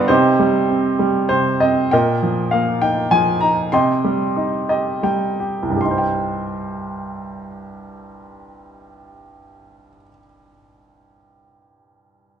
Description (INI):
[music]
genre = classical, lyrical solo piano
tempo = 72-102 BPM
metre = 3/4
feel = rubato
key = C minor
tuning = A4 = 441 Hz
[part]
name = clear upright piano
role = solo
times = 0.0-12.4 s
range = C2 to C6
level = -16 LUFS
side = right 1 dB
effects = none
[sound]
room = wet recital hall reverb, RT60 1.3 s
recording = nothing above 10.3 kHz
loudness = -16 LUFS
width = side -8 dB against mid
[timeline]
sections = 0.0-1.9 A section; 1.9-5.8 B section; 5.8-10.5 C section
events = slowing down 1.9-5.8; upright piano fill 4.4-5.8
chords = 0.1 Cm; 1.9 Bbsus4; 3.7 Cm